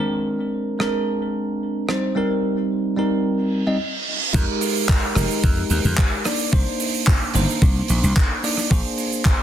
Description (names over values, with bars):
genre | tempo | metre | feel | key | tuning
nu-disco, nu disco | 110 BPM | 4/4 | straight | F dorian | A4 = 442 Hz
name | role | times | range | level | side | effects
bell-like tine electric piano | accompaniment | 0.0-9.4 s | G3 to Eb5 | -22 LUFS | equal | phaser, sidechain pumping, digital delay
damped 70s drum kit | drums | 0.8-9.4 s | crash cymbal, handclaps, hi-hat, rim click, shaker | -24 LUFS | right 3 dB | none
reverse cymbal | sound effects | 3.5-4.3 s | none | -26 LUFS | right 5 dB | none
slap bass | bass | 4.3-8.8 s | F1 to F2 | -20 LUFS | equal | none
electronic kick drum | drums | 4.3-9.4 s | none | -17 LUFS | equal | overdrive
congas | percussion | 5.2-7.5 s | none | -28 LUFS | left 1 dB | none
room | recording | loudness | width
light reverb | dense, heavily limited modern master | -18 LUFS | side -10 dB against mid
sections
0.0-4.3 A section; 4.3-9.4 B section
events
filter sweep on drum 0.0-4.3; reverse cymbal 3.5-4.3; drop 4.3-9.4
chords
0.0 Bb9; 1.9 Eb6; 4.3 Fm11; 6.3 Cm9; 8.7 Bb9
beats
0.53 1.07 1.62 | 2.16 2.71 3.25 3.80 | 4.34 4.89 5.43 5.98 | 6.53 7.07 7.62 8.16 | 8.71 9.25